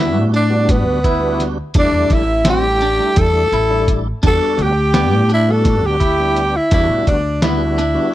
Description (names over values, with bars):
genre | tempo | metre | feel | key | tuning
progressive instrumental, band music in an uneven meter | 169 BPM (eighths) | 7/8 | straight | E minor | A4 = 441 Hz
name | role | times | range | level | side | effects
growling tenor saxophone | melody | 0.0-8.1 s | B3 to A4 | -17 LUFS | equal | none
clear alto saxophone | second line | 0.0-8.1 s | B4 to A5 | -24 LUFS | right 5 dB | none
tonewheel organ | accompaniment | 0.0-8.1 s | G3 to G4 | -24 LUFS | left 1 dB | chorus vibrato, slow rotary speaker
clean electric guitar | arpeggios | 0.0-8.1 s | B3 to E4 | -24 LUFS | left 1 dB | tremolo
upright bass | bass | 0.0-8.0 s | A1 to A2 | -18 LUFS | equal | none
lo-fi sampler-style drum kit | drums | 0.3-8.0 s | hi-hat, kick drum, snare drum | -16 LUFS | equal | none
room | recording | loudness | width
studio ambience | dry, close 1970s-style studio recording | -13 LUFS | side -14 dB against mid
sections
0.0-8.1 A section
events
none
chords
0.0 Em7; 1.8 C69 (rootless); 4.2 Em9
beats
0.34 0.69 1.04 1.40 | 1.75 2.10 2.46 2.81 3.17 3.52 3.88 | 4.23 4.59 4.94 5.30 5.65 6.01 6.36 | 6.72 7.08 7.43 7.79